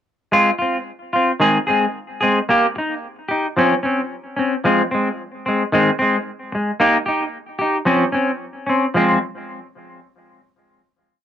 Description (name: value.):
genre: highlife.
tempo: 111 BPM.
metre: 4/4.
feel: swing 54% on 16ths.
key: F minor.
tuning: A4 = 439 Hz.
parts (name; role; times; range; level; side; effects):
clean electric guitar; solo; 0.3-9.2 s; Eb3 to Ab4; -16 LUFS; equal; wide subtle chorus, cassette tape, analog delay.
room: moderate small room reverb, RT60 0.5 s.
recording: home recording on cassette.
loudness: -16 LUFS.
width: side -10 dB against mid.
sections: 0.3-9.0 A section; 9.0-11.1 final chord.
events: none.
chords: 0.3 Fm; 1.4 Ab; 2.5 Eb; 3.6 Dbmaj7/F; 4.6 Fm; 5.7 Ab; 6.8 Eb; 7.9 Dbmaj7/F; 9.0 Fm.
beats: | 0.33 0.87 1.41 1.94 | 2.48 3.02 3.56 4.10 | 4.63 5.17 5.71 6.25 | 6.79 7.33 7.87 8.41 | 8.95.